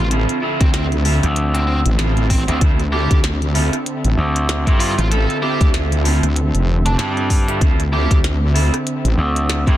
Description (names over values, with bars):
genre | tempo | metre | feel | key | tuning
glitch hop | 96 BPM | 4/4 | swing 58% on 16ths | D minor | A4 = 435 Hz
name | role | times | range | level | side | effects
bluesy overdriven lead guitar | melody | 0.0-8.2 s | C4 to A4 | -26 LUFS | right 1 dB | distortion, ping-pong delay
warm analog pad | sustained chords | 0.0-9.8 s | D3 to E5 | -26 LUFS | left 1 dB | chorus, sidechain pumping
wobble bass | bass | 0.0-9.2 s | F1 to D2 | -17 LUFS | equal | chorus, tube saturation
electric guitar at the edge of break-up | stabs | 0.1-9.8 s | C4 to A4 | -24 LUFS | right 2 dB | vintage 12-bit sampler grit, sidechain pumping, ping-pong delay
glitchy drum kit | drums | 0.1-9.8 s | hi-hat, rim click, snare drum | -25 LUFS | left 1 dB | soft clipping on snare
electronic kick drum | drums | 0.6-9.8 s | none | -15 LUFS | equal | none
gritty slap bass | bass | 1.2-9.8 s | D2 to G2 | -18 LUFS | equal | overdrive, tube saturation
room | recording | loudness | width
little or no reverb | dense, heavily limited modern master | -14 LUFS | side -13 dB against mid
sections
0.0-9.8 A section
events
none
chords
0.0 Dm9